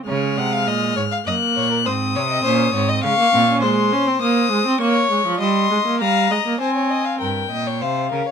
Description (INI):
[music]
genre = classical, baroque-style fugue for string quartet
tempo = 100 BPM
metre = 3/4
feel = straight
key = Db major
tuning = A4 = 442 Hz
[part]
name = warm viola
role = accompaniment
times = 0.0-7.2 s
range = F3 to Db4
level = -21 LUFS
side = right 3 dB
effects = none
[part]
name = warm violin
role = melody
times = 0.1-8.3 s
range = F5 to Gb6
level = -22 LUFS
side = left 6 dB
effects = none
[part]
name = warm violin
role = second line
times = 0.1-8.3 s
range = Bb4 to Gb5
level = -22 LUFS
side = left 4 dB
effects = none
[part]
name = rich cello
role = bass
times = 0.1-3.6, 7.2-8.2 s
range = Gb2 to Db3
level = -23 LUFS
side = right 6 dB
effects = none
[sound]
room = light reverb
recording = close, detailed microphones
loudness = -16 LUFS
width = side -7 dB against mid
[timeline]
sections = 0.1-7.2 A section; 7.2-8.3 B section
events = none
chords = 0.1 Db; 1.3 Ebm7 (rootless); 1.9 Ab; 3.0 Db; 3.6 Ab; 4.8 Bbm7; 5.4 Eb/G; 6.6 Ab/C; 7.2 Gm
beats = | 0.08 0.68 1.27 | 1.87 2.46 3.04 | 3.63 4.21 4.81 | 5.41 6.01 6.61 | 7.21 7.82